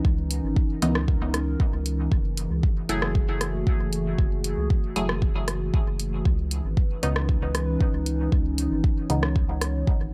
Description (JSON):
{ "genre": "dub techno", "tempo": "116 BPM", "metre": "4/4", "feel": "straight", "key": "F# minor", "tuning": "A4 = 440 Hz", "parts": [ { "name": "dark analog pad", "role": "sustained chords", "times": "0.0-10.1 s", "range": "E3 to C#5", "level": "-33 LUFS", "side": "equal", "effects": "chorus, phaser, sidechain pumping" }, { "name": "filtered dub chord stab", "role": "stabs", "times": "0.0-9.3 s", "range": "C#3 to G#4", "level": "-33 LUFS", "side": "equal", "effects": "phaser, cassette tape, sidechain pumping, dub echo" }, { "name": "round analog bass", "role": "bass", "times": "0.0-10.1 s", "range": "F#1 to C#2", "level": "-30 LUFS", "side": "equal", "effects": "sidechain pumping" }, { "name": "electronic kick drum", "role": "drums", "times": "0.0-10.0 s", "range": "none", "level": "-25 LUFS", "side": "equal", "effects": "none" }, { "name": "deep house drum kit", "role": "drums", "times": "0.3-9.7 s", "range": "hi-hat, rim click", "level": "-32 LUFS", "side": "equal", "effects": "dub echo" } ], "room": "little or no reverb", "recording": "dry, gritty hardware recording", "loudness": "-25 LUFS", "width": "mono", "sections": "0.0-10.1 A section", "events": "none", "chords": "0.0 C#m9; 2.1 F#m9; 6.3 C#m9" }